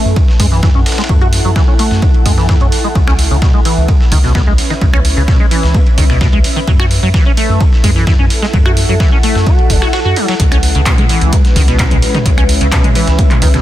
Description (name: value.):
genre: acid house.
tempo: 129 BPM.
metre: 4/4.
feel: straight.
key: C# minor.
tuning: A4 = 441 Hz.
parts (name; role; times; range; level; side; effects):
liquid acid bass; riff; 0.0-13.6 s; B2 to F#4; -17 LUFS; equal; analog chorus, sidechain pumping, dub echo.
granular cloud pad; texture; 0.0-13.6 s; C#4 to F#5; -20 LUFS; left 1 dB; built-in reverb, sidechain pumping.
saturated sub bass; bass; 0.1-13.6 s; F#1 to F#2; -14 LUFS; equal; sidechain pumping.
dusty soul sampler-style drum kit; drums; 0.2-13.6 s; ride cymbal, snare drum; -26 LUFS; right 1 dB; sidechain pumping on cymbals, high-pass filter on cymbals, high-pass filter on snare.
electronic kick drum; drums; 0.2-13.5 s; none; -11 LUFS; equal; none.
punchy analog drum machine; drums; 0.4-13.6 s; finger snaps, handclaps, hi-hat, toms; -19 LUFS; equal; soft clipping on snare.
warm analog pad; sustained chords; 10.4-13.6 s; G#3 to B4; -21 LUFS; right 1 dB; chorus, sidechain pumping.
room: little or no reverb.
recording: dense, heavily limited modern master.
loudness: -8 LUFS.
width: side -13 dB against mid.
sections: 0.0-13.6 A section.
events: filter sweep on acid bass 0.0-13.6; break 9.9-10.4.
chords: 0.0 F#m7; 3.0 C#m7; 6.7 F#m7; 10.4 C#m7.